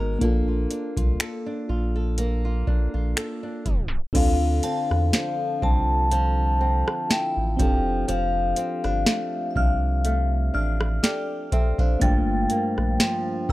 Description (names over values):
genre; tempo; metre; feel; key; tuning
contemporary R&B; 61 BPM; 4/4; swing 54% on 16ths; D minor; A4 = 439 Hz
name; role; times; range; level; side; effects
mellow FM electric piano; accompaniment; 0.0-13.5 s; A3 to F5; -30 LUFS; left 1 dB; chorus
flamenco guitar; arpeggios; 0.0-13.5 s; G2 to A#4; -31 LUFS; right 3 dB; analog delay
warm sub bass; bass; 0.0-13.5 s; F1 to E2; -24 LUFS; equal; none
booming analog drum machine; drums; 0.2-13.5 s; crash cymbal, finger snaps, hi-hat, kick drum, rim click, snare drum; -22 LUFS; equal; none
vibraphone with soft mallets; melody; 4.2-13.5 s; E5 to A5; -26 LUFS; left 2 dB; analog delay
glassy synth bell; texture; 4.6-13.5 s; A5 to A6; -36 LUFS; right 1 dB; chorus, phaser, analog delay
room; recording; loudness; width
little or no reverb; dry, gritty hardware recording, transformer saturation, tape stop; -21 LUFS; side -17 dB against mid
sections
0.0-4.1 A section; 4.1-13.5 B section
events
tape stop 3.7-4.1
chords
0.2 Bbmaj9; 4.1 Dm9; 7.6 F69; 12.0 Gm7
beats
| 0.21 1.20 2.18 3.16 | 4.15 5.13 6.12 7.10 | 8.08 9.07 10.05 11.03 | 12.02 13.00